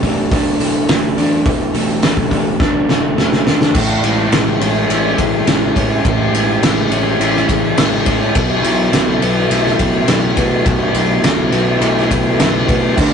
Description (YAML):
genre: rock, shoegaze and dream pop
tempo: 104 BPM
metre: 4/4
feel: straight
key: A major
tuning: A4 = 440 Hz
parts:
  - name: overdriven semi-hollow guitar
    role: riff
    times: 0.0-13.1 s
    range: E2 to D4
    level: -20 LUFS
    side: left 3 dB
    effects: none
  - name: overdriven semi-hollow guitar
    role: riff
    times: 0.0-13.1 s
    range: A2 to D4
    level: -18 LUFS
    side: right 3 dB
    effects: none
  - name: growling fingered electric bass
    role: bass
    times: 0.0-13.1 s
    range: E1 to B2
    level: -23 LUFS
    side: left 1 dB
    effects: overdrive
  - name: loose indie drum kit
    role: drums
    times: 0.0-13.1 s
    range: crash cymbal, hi-hat, kick drum, ride cymbal, snare drum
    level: -15 LUFS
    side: equal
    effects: none
room: wet small room reverb, RT60 0.5 s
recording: rough rehearsal-room recording, tube saturation, nothing above 10.3 kHz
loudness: -12 LUFS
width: side -7 dB against mid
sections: 0.0-3.7 A section; 3.7-13.1 B section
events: drum fill 2.6-3.7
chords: 0.0 E9sus4; 3.7 Amaj7; 8.4 B7sus4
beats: 0.30 0.88 | 1.45 2.02 2.60 3.17 | 3.75 4.32 4.90 5.47 | 6.05 6.62 7.20 7.78 | 8.35 8.93 9.51 10.08 | 10.66 11.24 11.82 12.40 | 12.97